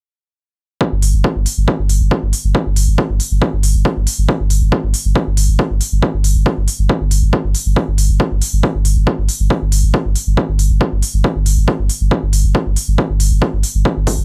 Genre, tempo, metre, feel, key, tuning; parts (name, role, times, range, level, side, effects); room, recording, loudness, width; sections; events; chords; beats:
driving peak-time techno; 138 BPM; 4/4; straight; A4 = 440 Hz
electronic kick drum; drums; 0.8-14.2 s; -20 LUFS; equal; high-pass filter on kick, studio reverb, high-pass filter on room
saturated sub bass; bass; 0.9-14.2 s; G1; -16 LUFS; equal; tube saturation, sidechain pumping, low-pass filter
electronic hi-hat; drums; 1.0-14.2 s; -24 LUFS; equal; studio reverb
little or no reverb; dry, gritty hardware recording, transformer saturation; -15 LUFS; mono
0.8-14.2 A section
| 0.81 1.24 1.68 2.11 | 2.55 2.98 3.42 3.85 | 4.29 4.72 5.16 5.59 | 6.03 6.46 6.89 7.33 | 7.76 8.20 8.63 9.07 | 9.50 9.94 10.37 10.81 | 11.24 11.68 12.11 12.55 | 12.98 13.42 13.85